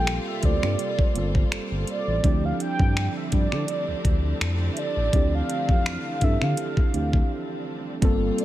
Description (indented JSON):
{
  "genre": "contemporary R&B",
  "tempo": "83 BPM",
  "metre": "4/4",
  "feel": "swing 54% on 16ths",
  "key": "unclear",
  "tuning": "A4 = 441 Hz",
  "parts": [
    { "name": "mellow horn-like synth lead", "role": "melody", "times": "0.0-8.4 s", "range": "D5 to G5", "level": "-30 LUFS", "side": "right 1 dB", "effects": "chorus, tape echo" },
    { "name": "muted felt-like synth keys", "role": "accompaniment", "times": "0.0-8.4 s", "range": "E3 to C5", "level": "-29 LUFS", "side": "right 3 dB", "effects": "chorus" },
    { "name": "rich studio string section", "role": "sustained chords", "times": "0.0-8.4 s", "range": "C3 to A4", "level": "-35 LUFS", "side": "left 2 dB", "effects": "sidechain pumping" },
    { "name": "smooth gliding synth bass", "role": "bass", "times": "0.0-8.3 s", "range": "G1 to D3", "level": "-26 LUFS", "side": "equal", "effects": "none" },
    { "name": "smooth R&B drum kit", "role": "drums", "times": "0.1-8.4 s", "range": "finger snaps, hi-hat, kick drum", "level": "-23 LUFS", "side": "equal", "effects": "vintage 12-bit sampler grit" }
  ],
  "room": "digital ambience",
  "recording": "faint mains hum",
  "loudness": "-21 LUFS",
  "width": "side -14 dB against mid",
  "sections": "0.0-8.0 A section",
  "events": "break 7.3-8.0",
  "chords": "0.0 Gm11; 2.2 Dm11",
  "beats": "0.07 0.79 1.52 | 2.24 2.96 3.68 4.41 | 5.13 5.85 6.58 7.30 | 8.02"
}